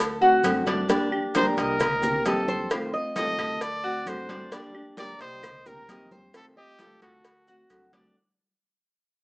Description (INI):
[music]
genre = latin, Cuban son and guajira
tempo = 132 BPM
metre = 4/4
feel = straight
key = unclear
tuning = A4 = 440 Hz
[part]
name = Cuban tres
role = arpeggios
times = 0.0-8.1 s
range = D4 to Eb5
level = -26 LUFS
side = equal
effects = none
[part]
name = upright bass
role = bass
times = 0.0-8.1 s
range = G1 to F2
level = -40 LUFS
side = equal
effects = none
[part]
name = nylon-string guitar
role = accompaniment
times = 0.2-8.2 s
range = C3 to G4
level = -29 LUFS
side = equal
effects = none
[part]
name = congas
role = percussion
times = 0.2-8.2 s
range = none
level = -34 LUFS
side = equal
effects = none
[part]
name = claves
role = percussion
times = 0.4-7.9 s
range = none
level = -38 LUFS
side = right 1 dB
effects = none
[part]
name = cowbell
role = percussion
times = 0.4-8.2 s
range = none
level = -30 LUFS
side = equal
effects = none
[part]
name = maracas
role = percussion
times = 0.4-8.2 s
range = none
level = -44 LUFS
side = right 2 dB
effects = none
[part]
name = clear trumpet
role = melody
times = 1.4-7.9 s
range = F#4 to Eb5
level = -28 LUFS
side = equal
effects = none
[sound]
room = moderate studio reverb, RT60 1.0 s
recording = worn, warbling old tape, cassette tape, warbly pitch drift, small speaker sound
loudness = -22 LUFS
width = side -24 dB against mid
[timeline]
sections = 0.0-8.2 A section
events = fade-out 0.0-8.2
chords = 0.0 D7; 0.9 Gm; 1.8 Cm7; 2.7 F7; 3.6 D7; 4.5 Gm; 5.4 Cm7; 6.3 F7; 7.2 D7